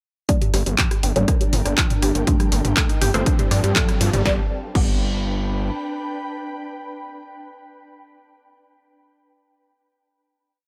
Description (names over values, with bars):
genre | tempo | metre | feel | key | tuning
melodic techno | 121 BPM | 4/4 | straight | unclear | A4 = 440 Hz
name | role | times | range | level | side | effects
tight sequenced synth | arpeggios | 0.3-4.9 s | D3 to Bb4 | -30 LUFS | equal | chorus, phaser, sidechain pumping, delay
filtered dub chord stab | stabs | 0.3-7.9 s | F3 to D4 | -29 LUFS | equal | phaser, ensemble chorus, sidechain pumping, delay
electronic kick drum | drums | 0.3-4.9 s | none | -23 LUFS | equal | none
techno drum kit | drums | 0.3-4.9 s | crash cymbal, handclaps, hi-hat, rim click, snare drum, toms | -26 LUFS | equal | sidechain pumping on hats, sidechain pumping on toms, sidechain pumping on cymbals
riser | sound effects | 2.4-4.3 s | none | -35 LUFS | equal | none
ethereal airy pad | texture | 1.1-7.7 s | C4 to B5 | -33 LUFS | equal | ensemble chorus, built-in reverb, sidechain pumping
gritty driven synth bass | bass | 0.5-5.7 s | G1 to G2 | -24 LUFS | equal | sidechain pumping
room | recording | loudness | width
light reverb | none | -20 LUFS | mono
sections
0.3-4.3 build; 4.3-8.2 final chord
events
build-up 0.3-4.3; filter sweep on synth arpeggio sound 0.3-4.3; filter sweep on synth stab 0.3-4.3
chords
0.3 Gm; 2.3 F/G; 4.3 G